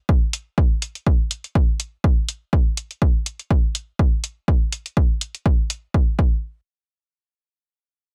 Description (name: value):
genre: minimal techno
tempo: 123 BPM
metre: 4/4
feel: swing 55% on 16ths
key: none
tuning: none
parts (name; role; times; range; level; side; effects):
- electronic kick drum; drums; 0.1-6.3 s; none; -20 LUFS; equal; none
- electronic hi-hat; drums; 0.3-5.8 s; none; -27 LUFS; equal; none
room: little or no reverb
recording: none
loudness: -21 LUFS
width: mono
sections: 0.0-6.4 A section; 6.4-8.1 B section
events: none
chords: none